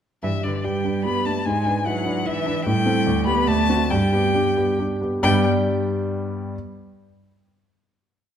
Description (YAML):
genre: quick classical-period movement for piano trio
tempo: 135-151 BPM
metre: 3/4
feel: straight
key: G major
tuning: A4 = 440 Hz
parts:
  - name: rich violin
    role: melody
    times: 0.2-5.5 s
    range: D5 to B5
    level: -25 LUFS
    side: left 4 dB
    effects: none
  - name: rich cello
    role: second line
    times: 0.2-5.5 s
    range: D3 to B3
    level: -26 LUFS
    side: right 8 dB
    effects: none
  - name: warm concert grand piano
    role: accompaniment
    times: 0.2-6.6 s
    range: D2 to D5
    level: -21 LUFS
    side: left 1 dB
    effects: none
room: wet scoring stage reverb, RT60 1.4 s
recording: dark, warm production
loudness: -19 LUFS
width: side -9 dB against mid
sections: 0.2-5.2 A section; 5.2-6.5 final chord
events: none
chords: 0.2 G; 1.5 E7/G#; 2.7 Am7; 3.1 G/D; 3.5 D7; 3.9 G